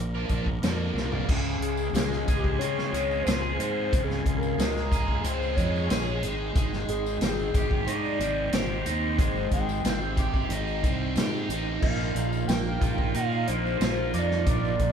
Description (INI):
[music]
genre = psychedelic rock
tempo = 91 BPM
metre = 4/4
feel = straight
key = unclear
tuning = A4 = 439 Hz
[part]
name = overdriven synth lead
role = melody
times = 0.0-14.9 s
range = Ab4 to G5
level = -31 LUFS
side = left 1 dB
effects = phaser
[part]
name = mellow tonewheel organ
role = sustained chords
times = 0.0-14.9 s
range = Eb4 to C6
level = -37 LUFS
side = right 5 dB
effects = slow rotary speaker, chorus vibrato
[part]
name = fuzz fingered electric bass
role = bass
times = 0.0-14.9 s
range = Ab1 to Db3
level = -30 LUFS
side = equal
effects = overdrive
[part]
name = crunchy overdriven guitar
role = riff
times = 0.1-14.9 s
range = Bb2 to Bb4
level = -31 LUFS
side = equal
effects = phaser
[part]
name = vintage drum kit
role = drums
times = 0.3-14.9 s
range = crash cymbal, hi-hat, kick drum, snare drum, toms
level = -28 LUFS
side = equal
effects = none
[part]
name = tambourine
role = percussion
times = 0.6-14.7 s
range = none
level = -48 LUFS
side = left 7 dB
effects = none
[sound]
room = moderate studio reverb, RT60 0.9 s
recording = band playing live in one room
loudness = -24 LUFS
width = side -7 dB against mid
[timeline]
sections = 0.0-1.3 A section; 1.3-14.9 B section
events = drum fill 1.0-1.3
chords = 0.0 Bbadd9; 1.3 Dbmaj7; 6.2 Abmaj7; 11.8 Bbsus4